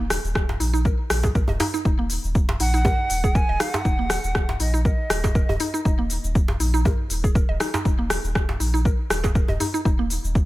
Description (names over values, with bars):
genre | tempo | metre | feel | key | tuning
afro house | 120 BPM | 4/4 | swing 55% on 16ths | Eb minor | A4 = 442 Hz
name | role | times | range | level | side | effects
mallet-like synth pluck | arpeggios | 0.0-10.1 s | Bb3 to Eb5 | -29 LUFS | right 1 dB | chorus, sidechain pumping, digital delay
warm sub bass | bass | 0.0-10.5 s | Eb1 to Bb1 | -25 LUFS | equal | sidechain pumping
afro-pop drum kit | drums | 0.1-10.5 s | hi-hat, rim click, shaker | -27 LUFS | left 1 dB | none
electronic kick drum | drums | 0.4-10.5 s | none | -21 LUFS | equal | overdrive
djembe | percussion | 0.5-9.7 s | none | -29 LUFS | right 1 dB | none
bright reedy bansuri | melody | 2.6-5.6 s | Eb5 to Ab5 | -28 LUFS | right 2 dB | vintage 12-bit sampler grit, digital delay
room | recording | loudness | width
little or no reverb | none | -19 LUFS | side -17 dB against mid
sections
0.0-10.5 A section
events
none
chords
0.0 Eb5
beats
0.35 0.85 1.35 | 1.85 2.35 2.85 3.35 | 3.85 4.35 4.85 5.35 | 5.85 6.35 6.85 7.35 | 7.85 8.35 8.85 9.35 | 9.85 10.35